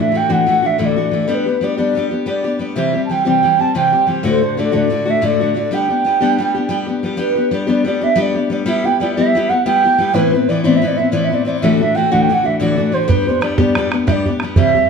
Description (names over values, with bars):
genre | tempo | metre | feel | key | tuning
celtic folk, Celtic slip jig | 122 BPM (dotted quarters) | 9/8 | straight | G major | A4 = 440 Hz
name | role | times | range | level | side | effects
mellow wooden flute | melody | 0.0-14.9 s | B4 to A5 | -16 LUFS | right 3 dB | none
picked steel-string acoustic guitar | accompaniment | 0.0-14.9 s | D2 to G4 | -16 LUFS | left 3 dB | none
bodhran | percussion | 13.1-14.6 s | none | -17 LUFS | right 3 dB | none
room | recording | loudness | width
moderate large studio reverb, RT60 1.3 s | band playing live in one room | -13 LUFS | side -5 dB against mid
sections
0.0-7.2 A section; 7.2-14.9 A section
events
none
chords
0.0 Dadd9; 1.3 G; 2.8 C; 4.2 D; 5.7 G; 8.7 Em/G; 10.1 Amadd9; 11.6 Dadd9; 13.1 G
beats
0.30 0.79 | 1.28 1.77 2.27 | 2.76 3.25 3.74 | 4.24 4.73 5.22 | 5.71 6.21 6.70 | 7.19 7.68 8.18 | 8.67 9.16 9.65 | 10.14 10.63 11.12 | 11.62 12.11 12.60 | 13.09 13.58 14.07 | 14.56